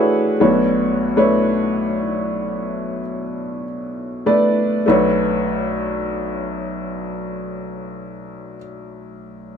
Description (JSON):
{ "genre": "folk", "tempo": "48-60 BPM", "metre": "4/4", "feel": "straight", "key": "B minor", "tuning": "A4 = 437 Hz", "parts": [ { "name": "clear upright piano", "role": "melody", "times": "0.0-9.6 s", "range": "A1 to D5", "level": "-18 LUFS", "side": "equal", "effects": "none" }, { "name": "felt-muted upright piano", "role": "arpeggios", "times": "4.3-8.6 s", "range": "B4", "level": "-28 LUFS", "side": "equal", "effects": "none" } ], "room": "moderate small room reverb, RT60 0.6 s", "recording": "minimal, uncompressed stereo recording", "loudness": "-17 LUFS", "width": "side -7 dB against mid", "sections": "0.0-4.9 A section; 4.9-9.6 B section", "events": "slowing down 0.0-4.9", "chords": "0.4 Bm9" }